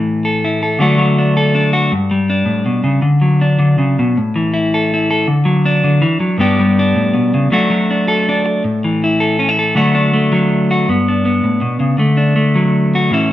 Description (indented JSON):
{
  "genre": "highlife",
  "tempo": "107 BPM (dotted quarters)",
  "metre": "12/8",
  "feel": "straight",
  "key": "D major",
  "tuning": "A4 = 436 Hz",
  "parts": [
    { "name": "clean electric guitar", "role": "solo", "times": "0.0-13.3 s", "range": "G2 to A4", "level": "-12 LUFS", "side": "left 1 dB", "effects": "spring reverb" }
  ],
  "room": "moderate small room reverb, RT60 0.6 s",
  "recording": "band playing live in one room",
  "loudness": "-12 LUFS",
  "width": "side -13 dB against mid",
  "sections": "0.0-9.8 A section; 9.8-13.3 B section",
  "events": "none",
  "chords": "0.0 A5; 0.8 D; 1.9 G; 3.0 D; 4.2 A5; 5.3 D; 6.4 G; 7.5 D; 8.6 A5; 9.8 D; 10.9 G; 12.0 D"
}